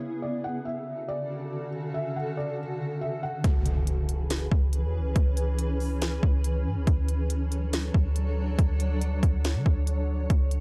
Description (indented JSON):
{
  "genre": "hip hop, atmospheric cloud-rap",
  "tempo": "140 BPM",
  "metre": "4/4",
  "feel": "half-time",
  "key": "unclear",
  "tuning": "A4 = 440 Hz",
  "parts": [
    { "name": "granular cloud pad", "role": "sustained chords", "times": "0.0-10.6 s", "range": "C#3 to C#5", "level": "-35 LUFS", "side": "equal", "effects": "built-in reverb, sidechain pumping, low-pass filter" },
    { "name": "felt-muted upright piano", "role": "melody", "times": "0.2-3.4 s", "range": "D5 to F#5", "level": "-37 LUFS", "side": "equal", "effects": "low-pass filter, analog delay" },
    { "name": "clean 808-style bass", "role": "bass", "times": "3.4-10.6 s", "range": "C#2 to D3", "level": "-28 LUFS", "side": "equal", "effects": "none" },
    { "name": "trap drum kit", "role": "drums", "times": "3.4-10.6 s", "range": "hi-hat, kick drum, snare drum", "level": "-29 LUFS", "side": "equal", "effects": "none" },
    { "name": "impact", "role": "sound effects", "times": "3.4-5.2 s", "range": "none", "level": "-38 LUFS", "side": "equal", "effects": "none" }
  ],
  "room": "little or no reverb",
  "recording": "dry, gritty hardware recording",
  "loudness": "-27 LUFS",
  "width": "mono",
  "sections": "0.0-3.4 A section; 3.4-10.6 B section",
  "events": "filter sweep 0.0-3.4; impact 3.4-5.2",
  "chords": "0.0 Dmaj7; 3.4 C#m7; 6.9 Dmaj7"
}